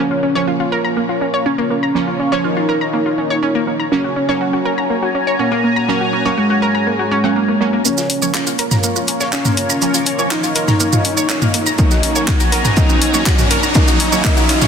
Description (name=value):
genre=melodic techno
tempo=122 BPM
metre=4/4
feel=straight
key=Bb minor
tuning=A4 = 442 Hz
part: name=fat analog lead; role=melody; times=0.0-14.7 s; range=Ab3 to Eb4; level=-20 LUFS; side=equal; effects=sidechain pumping, ping-pong delay
part: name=sweeping resonant pad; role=sustained chords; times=0.0-14.7 s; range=Bb3 to Bb5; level=-22 LUFS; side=left 1 dB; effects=chorus, sidechain pumping
part: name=analog pluck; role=arpeggios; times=0.0-14.7 s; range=Bb3 to Bb5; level=-20 LUFS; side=equal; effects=chorus, sidechain pumping, dub echo
part: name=synth brass stab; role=stabs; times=0.0-14.7 s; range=F3 to Db4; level=-22 LUFS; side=right 4 dB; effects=chorus, phaser, sidechain pumping, dub echo
part: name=deep house drum kit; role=drums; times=7.9-14.7 s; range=handclaps, hi-hat, shaker, toms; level=-18 LUFS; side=right 1 dB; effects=overdrive, sidechain pumping on perc, sidechain pumping on hats, sidechain pumping on toms
part: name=warm soul drum kit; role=drums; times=7.9-14.7 s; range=hi-hat, shaker, snare drum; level=-27 LUFS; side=left 1 dB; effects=none
part: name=riser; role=sound effects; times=9.6-14.7 s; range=none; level=-23 LUFS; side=right 1 dB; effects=none
part: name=electronic kick drum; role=drums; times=11.8-14.3 s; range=none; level=-15 LUFS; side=left 1 dB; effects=overdrive
room=moderate huge ambient reverb, RT60 6.5 s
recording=dense, heavily limited modern master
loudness=-13 LUFS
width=side -7 dB against mid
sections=0.0-7.9 A section; 7.9-14.7 B section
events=filter sweep on analog synth pad 0.0-7.9; build-up 7.9-14.7; filter sweep on synth pluck 7.9-14.7; filter sweep on synth stab 7.9-14.7; riser 9.6-14.7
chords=0.0 Bbm; 3.9 Gb; 7.9 Bbm; 11.8 Gb